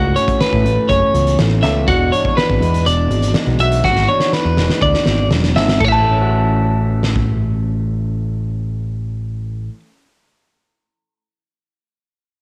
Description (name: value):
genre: math rock and midwest emo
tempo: 122 BPM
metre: 4/4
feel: straight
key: A major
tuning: A4 = 440 Hz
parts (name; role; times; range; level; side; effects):
- electric guitar through a small old amp; accompaniment; 0.0-10.1 s; E2 to A4; -24 LUFS; equal; cassette tape
- twelve-string electric guitar; arpeggios; 0.0-9.8 s; F#4 to A5; -20 LUFS; equal; cassette tape
- overdriven picked electric bass; bass; 0.0-9.7 s; E1 to A2; -20 LUFS; equal; none
- loose indie drum kit; drums; 0.2-7.3 s; crash cymbal, hi-hat, kick drum, snare drum; -23 LUFS; equal; none
room: small room ambience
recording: home recording on cassette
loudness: -16 LUFS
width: mono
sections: 0.0-5.8 A section; 5.8-9.7 B section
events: drum fill 3.8-5.8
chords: 0.0 A6; 1.9 E9; 5.8 A6